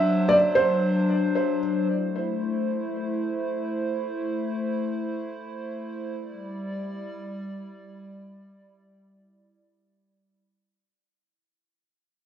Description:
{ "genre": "IDM", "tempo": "free time", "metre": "none", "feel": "none", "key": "C lydian", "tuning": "A4 = 440 Hz", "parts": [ { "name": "felt-muted upright piano", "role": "melody", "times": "0.0-1.6 s", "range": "C5 to E5", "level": "-23 LUFS", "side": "right 2 dB", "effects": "digital delay" }, { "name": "hollow soft pad", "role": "sustained chords", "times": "0.0-10.4 s", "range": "F#3 to D5", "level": "-27 LUFS", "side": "left 1 dB", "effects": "chorus" } ], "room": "wet lush hall reverb, RT60 2.7 s", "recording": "worn, warbling old tape, cassette tape, warbly pitch drift", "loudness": "-24 LUFS", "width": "side -9 dB against mid", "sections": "0.0-1.9 A section; 1.9-10.5 B section", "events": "fade-out 1.9-10.5", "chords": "0.0 D7; 1.9 C6; 6.2 Em7" }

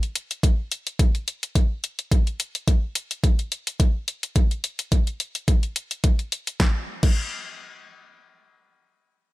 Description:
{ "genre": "nu-disco, nu disco", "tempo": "107 BPM", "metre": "4/4", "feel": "swing 54% on 16ths", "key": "none", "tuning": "none", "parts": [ { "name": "house drum kit", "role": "drums", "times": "0.0-7.2 s", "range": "crash cymbal, hi-hat, snare drum", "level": "-27 LUFS", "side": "left 2 dB", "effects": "none" }, { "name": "electronic kick drum", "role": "drums", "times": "0.4-7.2 s", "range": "none", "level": "-19 LUFS", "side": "equal", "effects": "overdrive" } ], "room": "little or no reverb", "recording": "none", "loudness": "-21 LUFS", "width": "side -18 dB against mid", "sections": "0.0-6.6 A section; 6.6-8.8 B section", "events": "none", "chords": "none" }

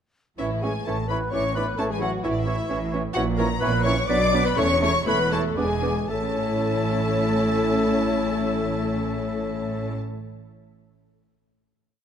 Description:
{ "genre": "quick classical-period movement for symphony orchestra", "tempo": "112-133 BPM", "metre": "3/4", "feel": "rubato", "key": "A major", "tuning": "A4 = 440 Hz", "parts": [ { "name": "rich studio violin section", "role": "melody", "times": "0.4-9.9 s", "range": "D5 to D6", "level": "-31 LUFS", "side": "left 2 dB", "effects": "none" }, { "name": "mellow clarinet", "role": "second line", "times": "0.4-9.9 s", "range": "E4 to D5", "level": "-30 LUFS", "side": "equal", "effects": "none" }, { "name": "mellow hollow concert flute", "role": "second line", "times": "0.4-10.0 s", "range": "C#5 to D6", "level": "-32 LUFS", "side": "left 2 dB", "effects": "none" }, { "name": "warm oboe", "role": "second line", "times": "0.4-9.9 s", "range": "B4 to E5", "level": "-34 LUFS", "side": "right 2 dB", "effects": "none" }, { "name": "warm studio violin section", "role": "second line", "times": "0.4-9.9 s", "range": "E4 to D5", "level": "-32 LUFS", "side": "left 5 dB", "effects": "none" }, { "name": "mellow bassoon", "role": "accompaniment", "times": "0.4-9.9 s", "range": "E3 to C#4", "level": "-32 LUFS", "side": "right 1 dB", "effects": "none" }, { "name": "rich studio viola section", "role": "accompaniment", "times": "0.4-9.9 s", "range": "A3 to E4", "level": "-32 LUFS", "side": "right 2 dB", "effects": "none" }, { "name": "dark French horn section", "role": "sustained chords", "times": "0.4-9.9 s", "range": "E3 to D4", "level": "-29 LUFS", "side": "left 4 dB", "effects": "none" }, { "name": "warm studio cello section", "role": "bass", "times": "0.4-9.9 s", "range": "E2 to B2", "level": "-30 LUFS", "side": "right 2 dB", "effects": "none" }, { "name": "warm studio double bass section", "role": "bass", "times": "0.4-10.0 s", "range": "E1 to B1", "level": "-30 LUFS", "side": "right 4 dB", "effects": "none" } ], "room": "moderate concert hall reverb, RT60 2.2 s", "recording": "none", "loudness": "-21 LUFS", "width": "side -8 dB against mid", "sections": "0.4-6.1 A section; 6.1-9.2 final chord", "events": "slowing down 2.5-6.1", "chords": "0.4 A; 1.3 E5/A; 1.8 A; 3.2 F#7/A# (rootless); 4.1 Bm; 4.6 A/E; 5.6 E7; 6.1 A" }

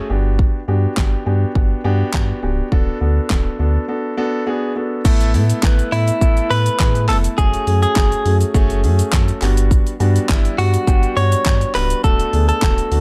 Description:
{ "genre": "dance-pop", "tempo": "103 BPM", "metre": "4/4", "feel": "straight", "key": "A major", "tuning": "A4 = 440 Hz", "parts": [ { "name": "warm concert grand piano", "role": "accompaniment", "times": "0.0-13.0 s", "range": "G3 to B4", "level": "-25 LUFS", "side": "equal", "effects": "sidechain pumping" }, { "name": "sub bass with octave", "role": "bass", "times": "0.1-13.0 s", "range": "C#1 to A2", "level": "-20 LUFS", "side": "equal", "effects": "sidechain pumping" }, { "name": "pop drum kit", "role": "drums", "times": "0.4-13.0 s", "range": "crash cymbal, handclaps, hi-hat, kick drum, shaker, snare drum", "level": "-20 LUFS", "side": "equal", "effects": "none" }, { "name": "direct-recorded clean electric guitar", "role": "melody", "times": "5.9-13.0 s", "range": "E4 to C#5", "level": "-22 LUFS", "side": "equal", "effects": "digital delay" } ], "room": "digital ambience", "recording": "dark, warm production", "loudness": "-17 LUFS", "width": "mono", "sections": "0.0-5.0 A section; 5.0-13.0 B section", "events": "break 3.9-5.0", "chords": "0.1 Gmaj7; 2.7 D6; 5.0 Asus2; 7.4 F#madd9; 9.4 Gmaj7; 12.0 D6" }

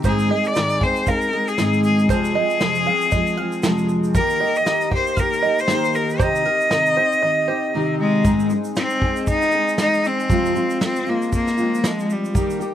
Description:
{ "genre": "acoustic pop", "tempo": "117 BPM", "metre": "4/4", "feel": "swing 60% on 16ths", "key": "unclear", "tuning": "A4 = 440 Hz", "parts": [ { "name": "fingerpicked steel-string acoustic guitar", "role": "accompaniment", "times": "0.0-12.7 s", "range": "F2 to Ab4", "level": "-22 LUFS", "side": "equal", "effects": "double-tracked left and right, slapback echo" }, { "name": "open-back banjo", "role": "arpeggios", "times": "0.0-7.6 s", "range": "Bb4 to G5", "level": "-26 LUFS", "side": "right 8 dB", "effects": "none" }, { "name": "vintage brush drum kit", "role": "drums", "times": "0.0-12.6 s", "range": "kick drum, shaker, snare drum", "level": "-22 LUFS", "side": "equal", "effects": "none" }, { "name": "tube shaker", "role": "percussion", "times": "0.0-12.7 s", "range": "none", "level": "-41 LUFS", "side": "right 7 dB", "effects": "none" }, { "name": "bright cello", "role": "melody", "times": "0.1-12.6 s", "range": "G3 to Eb5", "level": "-20 LUFS", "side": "left 1 dB", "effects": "none" } ], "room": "little or no reverb", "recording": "recorded outdoors, with no room sound", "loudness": "-17 LUFS", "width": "side -10 dB against mid", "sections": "0.0-8.2 A section; 8.2-12.7 B section", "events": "none", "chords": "0.0 Ab; 2.1 Fm; 4.1 Eb; 6.2 Cm; 8.2 Ab; 10.3 Fm" }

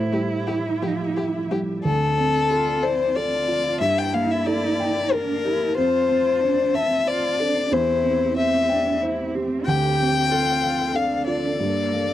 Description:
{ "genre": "neoclassical piano and strings", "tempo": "92 BPM", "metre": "3/4", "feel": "rubato", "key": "D minor", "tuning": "A4 = 440 Hz", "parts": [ { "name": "warm cello", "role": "second line", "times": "0.0-12.1 s", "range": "Bb3 to G4", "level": "-28 LUFS", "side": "right 4 dB", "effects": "none" }, { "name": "felt-muted upright piano", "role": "accompaniment", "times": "0.0-12.1 s", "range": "D2 to A5", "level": "-24 LUFS", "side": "right 2 dB", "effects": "none" }, { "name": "clear studio string section", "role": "sustained chords", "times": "0.0-12.1 s", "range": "Bb3 to A5", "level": "-34 LUFS", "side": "left 2 dB", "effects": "none" }, { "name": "warm violin", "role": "melody", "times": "0.1-12.1 s", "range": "G4 to G5", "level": "-22 LUFS", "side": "left 5 dB", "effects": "none" } ], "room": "little or no reverb", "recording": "dry, close 1970s-style studio recording", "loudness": "-19 LUFS", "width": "side -12 dB against mid", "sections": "0.0-1.8 A section; 1.8-12.1 B section", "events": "none", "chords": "0.0 Am7; 1.8 Dm7; 3.8 Gmadd9; 5.8 F; 7.7 C/E; 9.7 Dm7; 11.6 Gmadd9" }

